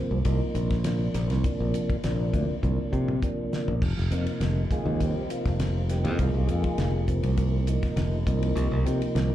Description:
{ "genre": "electric jazz fusion", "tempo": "101 BPM", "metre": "4/4", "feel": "straight", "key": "F minor from 3.8 s", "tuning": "A4 = 438 Hz", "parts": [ { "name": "tonewheel organ", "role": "accompaniment", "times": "0.0-9.3 s", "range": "C3 to Ab4", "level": "-30 LUFS", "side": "right 1 dB", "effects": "slow rotary speaker, overdrive, slapback echo" }, { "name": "modern bright fingered electric bass", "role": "bass", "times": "0.1-9.3 s", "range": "F1 to C3", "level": "-25 LUFS", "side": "equal", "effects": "none" }, { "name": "damped 70s drum kit", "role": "drums", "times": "0.2-9.3 s", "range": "crash cymbal, hi-hat, kick drum, ride cymbal, snare drum, toms", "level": "-31 LUFS", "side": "equal", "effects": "none" } ], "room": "light reverb", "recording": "live gig heard through the venue's PA, club reverb", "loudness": "-24 LUFS", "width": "side -12 dB against mid", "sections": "0.0-3.8 A section; 3.8-9.3 B section", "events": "drum fill 2.6-3.8", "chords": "0.0 Cm11; 1.4 Bbadd9; 3.8 Fm11; 8.3 Cm11", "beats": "0.25 0.85 | 1.44 2.04 2.63 3.22 | 3.82 4.41 5.00 5.60 | 6.19 6.78 7.38 7.97 | 8.56 9.16" }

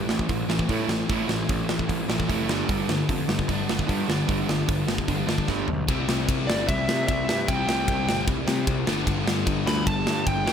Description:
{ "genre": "punk rock", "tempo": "150 BPM", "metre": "4/4", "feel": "straight", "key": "unclear", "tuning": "A4 = 442 Hz", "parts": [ { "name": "distorted electric guitar", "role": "riff", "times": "0.0-10.5 s", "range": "G2 to G4", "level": "-31 LUFS", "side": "equal", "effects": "distortion" }, { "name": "overdriven semi-hollow guitar", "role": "riff", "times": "0.0-5.9 s", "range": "G2 to A3", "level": "-29 LUFS", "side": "right 12 dB", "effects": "none" }, { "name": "sludgy distorted guitar", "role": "riff", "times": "0.0-10.5 s", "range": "G2 to C4", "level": "-30 LUFS", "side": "left 10 dB", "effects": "overdrive" }, { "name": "fuzz picked electric bass", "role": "bass", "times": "0.0-10.5 s", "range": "F1 to C3", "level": "-30 LUFS", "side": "equal", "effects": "overdrive" }, { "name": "big rock drum kit", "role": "drums", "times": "0.1-10.5 s", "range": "hi-hat, kick drum, ride cymbal, snare drum, toms", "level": "-26 LUFS", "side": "equal", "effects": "none" }, { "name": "smooth overdriven lead guitar", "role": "melody", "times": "6.5-10.5 s", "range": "D5 to B5", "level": "-28 LUFS", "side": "right 1 dB", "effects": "digital delay" } ], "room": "light reverb", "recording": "none", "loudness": "-22 LUFS", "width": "side -8 dB against mid", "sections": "0.0-5.9 A section; 5.9-10.5 B section", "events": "drum fill 5.5-5.9", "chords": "0.0 Am; 2.5 G; 5.9 C; 8.9 G", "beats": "0.29 0.69 | 1.09 1.49 1.89 2.29 | 2.69 3.09 3.49 3.89 | 4.29 4.69 5.09 5.49 | 5.89 6.29 6.68 7.08 | 7.48 7.88 8.27 8.67 | 9.07 9.47 9.87 10.26" }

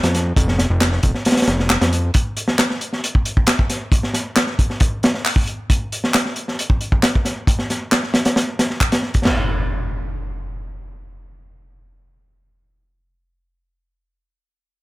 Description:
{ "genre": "breakbeat, breaks", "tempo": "135 BPM", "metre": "4/4", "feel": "straight", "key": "unclear", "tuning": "A4 = 440 Hz", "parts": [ { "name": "fat analog bass", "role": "bass", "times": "0.0-2.1 s", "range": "F1 to F2", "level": "-18 LUFS", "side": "equal", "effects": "none" }, { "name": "crunchy breakbeat drum kit", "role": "drums", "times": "0.0-9.4 s", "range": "china cymbal, hi-hat, kick drum, snare drum", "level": "-17 LUFS", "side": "equal", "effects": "none" }, { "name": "electronic handclaps", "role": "drums", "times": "0.8-8.9 s", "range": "none", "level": "-21 LUFS", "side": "equal", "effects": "none" }, { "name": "impact", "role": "sound effects", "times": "9.3-14.2 s", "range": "none", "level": "-24 LUFS", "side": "equal", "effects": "none" } ], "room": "little or no reverb", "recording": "none", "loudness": "-16 LUFS", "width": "side -19 dB against mid", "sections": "0.0-9.3 A section; 9.3-12.8 B section", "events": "none", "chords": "none", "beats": "| 0.36 0.81 1.25 1.70 | 2.14 2.59 3.03 3.48 | 3.92 4.37 4.81 5.25 | 5.70 6.14 6.59 7.03 | 7.48 7.92 8.37 8.81 | 9.25 9.70 10.14 10.59 | 11.03 11.48 11.92 12.37" }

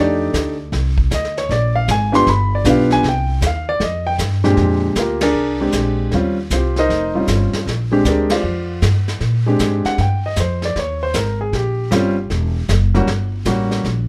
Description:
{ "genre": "jazz piano trio", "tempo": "155 BPM", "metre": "4/4", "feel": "swing 65% on 8ths", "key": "Bb mixolydian", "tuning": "A4 = 441 Hz", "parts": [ { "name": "clear baby grand piano", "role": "melody", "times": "0.0-13.9 s", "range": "Bb2 to C6", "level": "-20 LUFS", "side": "equal", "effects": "plate reverb" }, { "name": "upright bass", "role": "bass", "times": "0.0-14.1 s", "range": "E1 to Bb2", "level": "-21 LUFS", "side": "equal", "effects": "none" }, { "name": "vintage brush drum kit", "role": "drums", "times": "0.3-14.1 s", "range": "brushed snare drum, hi-hat, kick drum, ride cymbal, snare drum", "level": "-26 LUFS", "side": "equal", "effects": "none" } ], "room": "light reverb", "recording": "none", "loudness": "-17 LUFS", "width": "mono", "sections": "0.0-4.6 A section; 4.6-14.1 B section", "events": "grand piano solo 0.0-4.6; band accent 5.2, 8.2", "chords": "0.0 F13; 1.5 Bb; 2.3 G7; 3.0 Cm; 3.8 Fsus2; 4.6 Bb13; 6.1 Eb13; 7.7 Bb13; 10.8 Eb13; 12.3 Edim7", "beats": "0.34 0.73 1.11 | 1.50 1.89 2.27 2.66 | 3.04 3.43 3.81 4.20 | 4.58 4.97 5.36 5.74 | 6.13 6.51 6.90 7.28 | 7.67 8.06 8.44 8.83 | 9.21 9.60 9.99 10.37 | 10.76 11.15 11.53 11.92 | 12.31 12.69 13.08 13.46 | 13.85" }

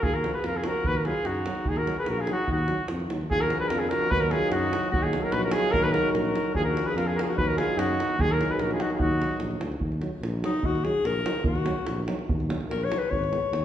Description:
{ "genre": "balkan folk, Balkan brass band", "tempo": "147 BPM", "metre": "2/4", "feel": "straight", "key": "Eb harmonic minor, Eb minor from 9.8 s", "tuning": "A4 = 440 Hz", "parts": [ { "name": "warm flugelhorn", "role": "melody", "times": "0.0-9.4 s", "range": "Gb4 to Cb5", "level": "-27 LUFS", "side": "equal", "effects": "none" }, { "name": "warm alto saxophone", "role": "second line", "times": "0.0-13.6 s", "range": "Eb4 to Db5", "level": "-31 LUFS", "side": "left 4 dB", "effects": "none" }, { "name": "dark tuba", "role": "bass", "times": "0.0-13.6 s", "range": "Ab1 to Gb2", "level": "-31 LUFS", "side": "equal", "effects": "none" }, { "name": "davul", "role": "percussion", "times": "0.0-13.6 s", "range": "none", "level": "-32 LUFS", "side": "right 1 dB", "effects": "none" }, { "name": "mellow French horn", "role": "accompaniment", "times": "0.2-13.4 s", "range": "Cb4 to Eb4", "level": "-36 LUFS", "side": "left 4 dB", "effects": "none" }, { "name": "mellow euphonium", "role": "accompaniment", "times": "0.2-13.4 s", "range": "F3 to Ab3", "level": "-34 LUFS", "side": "right 4 dB", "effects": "none" } ], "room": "wet recital hall reverb, RT60 1.6 s", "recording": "recorded in a church or concert hall", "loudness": "-24 LUFS", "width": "side -10 dB against mid", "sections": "0.0-3.3 A section; 3.3-9.8 A section; 9.8-13.6 B section", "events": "alto saxophone solo 9.8-13.6", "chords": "0.0 Ebmadd9; 1.7 Ebm; 3.3 Bb7b13; 4.1 Ebmadd9; 4.9 Ebm; 6.6 Bb7b13; 7.4 Ebmadd9; 8.2 Ebm; 13.1 Abm", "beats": "| 0.03 0.44 | 0.84 1.25 | 1.66 2.07 | 2.48 2.89 | 3.29 3.70 | 4.11 4.52 | 4.93 5.33 | 5.74 6.15 | 6.56 6.96 | 7.37 7.78 | 8.19 8.60 | 9.01 9.42 | 9.82 10.23 | 10.64 11.05 | 11.46 11.88 | 12.29 12.70 | 13.11 13.52" }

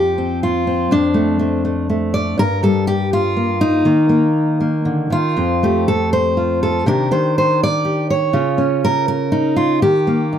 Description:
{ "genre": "folk, solo fingerstyle acoustic guitar", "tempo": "121 BPM", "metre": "3/4", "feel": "rubato", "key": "F mixolydian", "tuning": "A4 = 440 Hz", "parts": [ { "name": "fingerpicked steel-string acoustic guitar", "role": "solo", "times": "0.0-10.4 s", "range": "F2 to D5", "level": "-14 LUFS", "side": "equal", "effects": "none" } ], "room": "light reverb", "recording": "close, detailed microphones", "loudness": "-14 LUFS", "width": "side -9 dB against mid", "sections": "0.0-10.4 A section", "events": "none", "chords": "0.0 Fsus2; 0.9 Dm7/F; 2.4 Gm; 3.8 Eb5; 5.4 Fadd9; 6.9 Cmadd9; 8.3 Bbm/Db; 9.8 Eb", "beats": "0.42 | 0.92 1.41 1.89 | 2.38 2.87 3.36 | 3.85 4.35 4.86 | 5.37 5.87 6.37 | 6.87 7.36 7.84 | 8.34 8.84 9.34 | 9.83 10.33" }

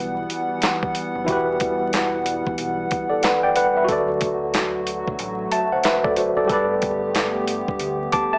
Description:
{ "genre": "hip hop, boom-bap hip-hop", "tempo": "92 BPM", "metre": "4/4", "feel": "swing 60% on 16ths", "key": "E minor", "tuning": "A4 = 440 Hz", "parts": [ { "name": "tine electric piano", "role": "accompaniment", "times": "0.0-8.4 s", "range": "E3 to D6", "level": "-24 LUFS", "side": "equal", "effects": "overdrive, high-pass filter, low-pass filter" }, { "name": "hollow soft pad", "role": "sustained chords", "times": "0.0-8.4 s", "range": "D3 to F#5", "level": "-29 LUFS", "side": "equal", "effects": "chorus, high-pass filter, low-pass filter" }, { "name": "deep dub fingered electric bass", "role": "bass", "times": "0.0-8.1 s", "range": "E1 to D2", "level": "-40 LUFS", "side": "equal", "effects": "none" }, { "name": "dusty soul sampler-style drum kit", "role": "drums", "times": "0.3-8.3 s", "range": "handclaps, hi-hat, kick drum, snare drum", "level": "-27 LUFS", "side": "equal", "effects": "none" } ], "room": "moderate studio reverb, RT60 0.6 s", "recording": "vinyl crackle, small speaker sound", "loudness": "-22 LUFS", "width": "mono", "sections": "0.0-8.4 A section", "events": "none", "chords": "0.0 Emadd9; 3.9 D; 6.5 Gadd9", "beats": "0.63 | 1.28 1.93 2.58 3.24 | 3.89 4.54 5.19 5.84 | 6.50 7.15 7.80" }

